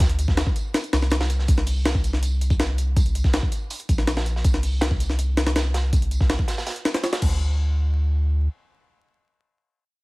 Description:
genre	drum and bass, jungle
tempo	162 BPM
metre	4/4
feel	straight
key	unclear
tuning	A4 = 440 Hz
part	soft dub sub bass	bass	0.0-8.5 s	Bb1 to D2	-22 LUFS	equal	tube saturation
part	crunchy breakbeat drum kit	drums	0.0-7.2 s	hi-hat, snare drum, tambourine	-33 LUFS	right 3 dB	high-pass filter on hats, small room reverb, high-pass filter on snare, high-pass filter on perc, high-pass filter on room
part	jungle sampler-style drum kit	drums	0.0-7.3 s	crash cymbal, hi-hat, kick drum, snare drum	-22 LUFS	equal	small room reverb
room	small room ambience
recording	vinyl crackle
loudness	-20 LUFS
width	side -23 dB against mid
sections	0.0-7.4 A section; 7.4-10.0 B section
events	none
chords	none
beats	| 0.00 0.37 0.74 1.11 | 1.48 1.85 2.22 2.59 | 2.96 3.33 3.71 4.08 | 4.45 4.82 5.19 5.56 | 5.93 6.30 6.67 7.04 | 7.41 7.78 8.15

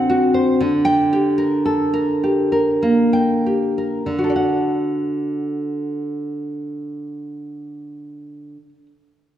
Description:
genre	romantic piece for solo classical guitar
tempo	45-61 BPM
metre	3/4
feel	rubato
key	D major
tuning	A4 = 441 Hz
part	nylon-string guitar	solo	0.0-8.9 s	D3 to G5	-18 LUFS	equal	none
room	wet recital hall reverb, RT60 1.6 s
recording	heard from further back in the room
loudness	-17 LUFS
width	side -11 dB against mid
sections	0.0-4.1 A section; 4.1-7.5 B section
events	slowing down 0.0-4.1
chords	0.0 D7; 0.6 Gm/D; 4.1 D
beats	| 0.60 1.66 2.82 | 4.09 5.23 6.41

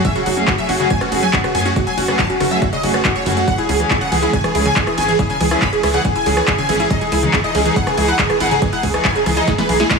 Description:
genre	uplifting trance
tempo	140 BPM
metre	4/4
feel	straight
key	unclear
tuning	A4 = 443 Hz
part	supersaw stab	melody	0.0-10.0 s	F#4 to B5	-20 LUFS	right 2 dB	sidechain pumping, dub echo
part	analog pluck	second line	0.0-10.0 s	F#4 to B5	-23 LUFS	equal	lush chorus, sidechain pumping, dub echo
part	wide unison pluck	arpeggios	0.0-10.0 s	C#3 to F#4	-22 LUFS	left 2 dB	sidechain pumping, dub echo
part	big-room dance drum kit	drums	0.0-10.0 s	handclaps, hi-hat, ride cymbal, rim click, snare drum	-21 LUFS	equal	none
part	electronic kick drum	drums	0.0-10.0 s	none	-21 LUFS	equal	none
part	rich studio string section	sustained chords	0.1-10.0 s	E3 to G#4	-23 LUFS	equal	sidechain pumping
part	tight sequencer bass	bass	0.3-9.8 s	F#1 to F#2	-22 LUFS	equal	sidechain pumping
room	light reverb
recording	none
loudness	-14 LUFS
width	side -4 dB against mid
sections	0.0-10.0 A section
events	drum fill 9.5-10.0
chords	0.0 F#madd9; 3.5 C#m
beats	| 0.05 0.48 0.91 1.33 | 1.76 2.19 2.62 3.05 | 3.48 3.90 4.33 4.76 | 5.19 5.62 6.05 6.48 | 6.91 7.33 7.76 8.19 | 8.62 9.05 9.48 9.90

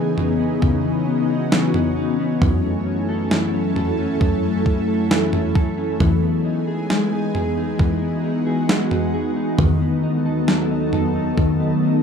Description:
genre	dream pop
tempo	67 BPM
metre	4/4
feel	straight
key	E major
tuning	A4 = 440 Hz
part	ethereal airy pad	sustained chords	0.0-12.0 s	D#2 to A4	-22 LUFS	equal	ensemble chorus, built-in reverb
part	mellow electric guitar	arpeggios	0.0-12.0 s	F#2 to A4	-22 LUFS	left 3 dB	analog chorus, tape echo
part	crisp 8-bit digital drum machine	drums	0.2-11.6 s	kick drum, snare drum, toms	-21 LUFS	right 1 dB	overdrive
room	moderate studio reverb, RT60 0.5 s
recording	rough home demo mix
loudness	-17 LUFS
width	side -6 dB against mid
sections	0.0-12.0 A section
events	none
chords	0.0 C#m9; 2.4 F#m7; 6.0 Emaj7; 9.6 B7/D#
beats	0.63 1.52 | 2.42 3.32 4.21 5.11 | 6.00 6.90 7.79 8.69 | 9.59 10.48 11.38

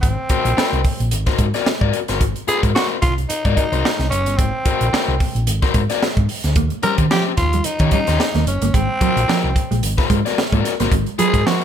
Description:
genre	funk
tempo	110 BPM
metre	4/4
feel	swing 56% on 16ths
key	unclear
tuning	A4 = 439 Hz
part	growling tenor saxophone	melody	0.0-11.6 s	C4 to Bb4	-21 LUFS	equal	none
part	hollow-body short-scale fingered electric bass	bass	0.0-11.4 s	Gb1 to Eb3	-20 LUFS	equal	none
part	crisp fusion drum kit	drums	0.0-11.6 s	hi-hat, kick drum, snare drum	-20 LUFS	equal	none
part	crunchy overdriven guitar	accompaniment	0.3-11.6 s	Db4 to D5	-23 LUFS	left 10 dB	none
part	mellow electric guitar	riff	6.6-11.6 s	F3 to Bb3	-22 LUFS	right 5 dB	wide subtle chorus
room	light reverb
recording	none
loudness	-15 LUFS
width	side -9 dB against mid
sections	0.0-11.6 A section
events	none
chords	0.0 Ab9; 6.6 Eb13; 8.7 Ab9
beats	| 0.03 0.58 1.12 1.67 | 2.21 2.76 3.30 3.85 | 4.39 4.94 5.48 6.02 | 6.57 7.11 7.66 8.20 | 8.74 9.29 9.83 10.37 | 10.91 11.46

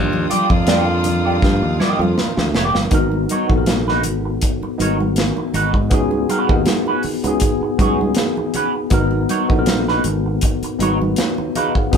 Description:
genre	lush 1970s-style soul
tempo	80 BPM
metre	4/4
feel	swing 54% on 16ths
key	G# minor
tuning	A4 = 439 Hz
part	tine electric piano	accompaniment	0.0-12.0 s	F3 to F#5	-21 LUFS	left 1 dB	overdrive, fast stereo tremolo
part	warm studio string section	sustained chords	0.0-2.9 s	D4 to Eb6	-30 LUFS	equal	none
part	clear horn section	stabs	0.0-2.5 s	D3 to F4	-23 LUFS	left 1 dB	none
part	modern bright fingered electric bass	bass	0.0-12.0 s	F1 to G#2	-21 LUFS	equal	none
part	congas	percussion	0.1-11.7 s	none	-26 LUFS	right 1 dB	none
part	electric guitar through a small old amp	riff	0.3-11.8 s	C#4 to Eb5	-22 LUFS	right 3 dB	wah
part	modern studio drum kit	drums	0.3-12.0 s	hi-hat, kick drum, snare drum	-19 LUFS	equal	none
room	moderate studio reverb, RT60 0.5 s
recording	band playing live in one room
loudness	-15 LUFS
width	side -7 dB against mid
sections	0.0-2.9 A section; 2.9-12.0 B section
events	drum fill 1.4-2.9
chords	0.0 Ebmaj9; 2.9 G#m7; 5.9 C#7sus4; 8.9 G#m7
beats	0.67 1.42 2.17 | 2.92 3.67 4.42 5.17 | 5.92 6.67 7.42 8.17 | 8.92 9.67 10.42 11.17 | 11.93

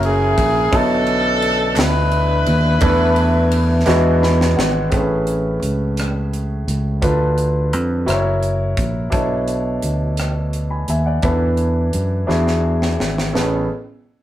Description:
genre	slow gospel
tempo	57 BPM (dotted quarters)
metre	6/8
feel	straight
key	A major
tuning	A4 = 442 Hz
part	warm horn section	melody	0.0-4.2 s	C#4 to B4	-18 LUFS	left 1 dB	none
part	clear concert grand piano	accompaniment	0.0-13.7 s	A1 to B5	-20 LUFS	equal	none
part	fingered electric bass	bass	0.0-13.7 s	F#1 to F#2	-19 LUFS	equal	none
part	crisp fusion drum kit	drums	0.0-13.5 s	hi-hat, kick drum, ride cymbal, rim click, snare drum	-24 LUFS	equal	none
part	group handclap	percussion	1.8-4.2 s	none	-28 LUFS	right 3 dB	none
room	moderate studio reverb, RT60 0.6 s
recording	rough rehearsal-room recording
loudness	-15 LUFS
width	side -12 dB against mid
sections	0.0-4.9 A section; 4.9-13.3 B section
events	drum fill 3.9-4.9, 12.3-13.3; grand piano fill 3.9-4.9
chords	0.0 F#7; 0.7 Bm11; 2.8 E7sus4; 3.9 E9; 4.9 Amaj9; 7.0 Dm6; 8.1 F#7; 9.1 Bm11; 11.2 E7sus4; 12.3 E9; 13.3 Amaj9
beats	| 0.73 1.77 | 2.82 3.87 | 4.92 5.97 | 7.02 8.08 | 9.13 10.18 | 11.24 12.29 | 13.34

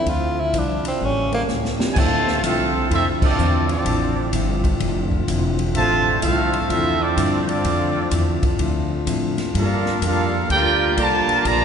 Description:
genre	jazz, big band swing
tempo	126 BPM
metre	4/4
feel	swing 66% on 8ths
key	D minor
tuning	A4 = 440 Hz
part	breathy tenor saxophone	melody	0.0-1.4 s	Bb3 to F4	-24 LUFS	equal	none
part	dark grand piano	accompaniment	0.0-1.9 s	F3 to A4	-32 LUFS	right 3 dB	none
part	hollow-body jazz guitar	accompaniment	0.0-11.6 s	A2 to A4	-26 LUFS	left 3 dB	none
part	clear trombone section	sustained chords	0.0-11.6 s	C#3 to G4	-29 LUFS	left 2 dB	none
part	upright bass	bass	0.0-11.6 s	E1 to A2	-23 LUFS	equal	none
part	swinging big-band drum kit	drums	0.1-11.6 s	crash cymbal, hi-hat, kick drum, ride cymbal, snare drum	-26 LUFS	equal	none
part	clear trumpet section	melody	1.9-11.6 s	C4 to Bb5	-21 LUFS	right 1 dB	none
part	mellow trombone section	second line	2.0-11.6 s	C3 to G4	-26 LUFS	right 2 dB	none
room	wet church reverb, RT60 3.4 s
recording	recorded in a church or concert hall, nothing above 10.6 kHz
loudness	-17 LUFS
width	side -7 dB against mid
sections	0.0-2.0 A section; 2.0-11.6 B section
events	tenor saxophone solo 0.0-2.0; drum fill 1.5-2.0; band accent 3.1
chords	0.0 Dm9; 1.0 A7b9; 2.0 Dm9; 9.5 Gm9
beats	| 0.06 0.54 1.01 1.48 | 1.96 2.43 2.90 3.38 | 3.85 4.33 4.80 5.27 | 5.75 6.22 6.70 7.17 | 7.65 8.12 8.60 9.07 | 9.55 10.02 10.50 10.97 | 11.45

